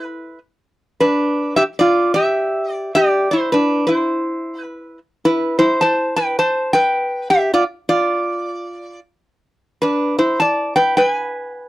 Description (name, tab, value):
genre	hawaiian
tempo	105 BPM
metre	4/4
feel	swing 61% on 8ths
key	C major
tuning	A4 = 440 Hz
part	metal-body resonator slide guitar	solo	0.0-11.7 s	D4 to A5	-15 LUFS	equal	none
room	little or no reverb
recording	dry, close 1970s-style studio recording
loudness	-15 LUFS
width	side -17 dB against mid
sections	0.0-5.2 A section; 5.2-11.7 B section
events	none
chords	0.0 Fmaj7(no3)/E (rootless); 0.6 G5; 2.9 Cadd9; 5.2 Emadd11; 7.5 N.C.; 9.8 E5; 11.0 B5